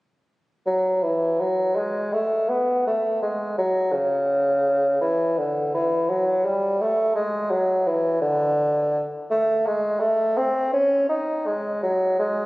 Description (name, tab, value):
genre	classical, baroque-style fantasia for unaccompanied bassoon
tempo	56 BPM (dotted quarters)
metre	6/8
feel	rubato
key	F# minor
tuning	A4 = 441 Hz
part	mellow bassoon	solo	0.7-12.5 s	C#3 to D#4	-20 LUFS	equal	none
room	wet church reverb, RT60 2.6 s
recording	recorded on a phone in the room, studio reverb, compression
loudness	-20 LUFS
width	side -21 dB against mid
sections	0.6-12.5 A section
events	none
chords	none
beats	| 0.64 1.77 | 2.87 3.94 | 5.02 6.10 | 7.17 8.23 | 9.31 10.38 | 11.46